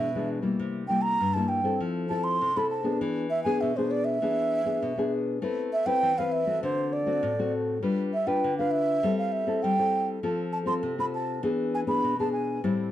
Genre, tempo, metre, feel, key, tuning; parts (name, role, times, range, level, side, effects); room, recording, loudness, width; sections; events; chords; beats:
samba; 100 BPM; 4/4; straight; A4 = 439 Hz
baroque flute; melody; 0.0-12.6 s; C5 to C6; -27 LUFS; right 2 dB
nylon-string guitar; accompaniment; 0.0-12.9 s; G2 to B4; -27 LUFS; left 2 dB
moderate studio reverb, RT60 0.6 s; -24 LUFS; side -12 dB against mid
0.0-12.9 A section
0.0 E7/B; 0.6 C7; 1.8 Fmaj7; 3.0 E7; 5.4 Amadd9; 6.6 D7; 7.8 G7; 9.0 C6/G; 10.2 F; 11.4 E7
| 0.60 1.20 1.80 2.41 | 3.01 3.61 4.22 4.82 | 5.42 6.03 6.63 7.23 | 7.83 8.43 9.03 9.63 | 10.24 10.84 11.44 12.04 | 12.64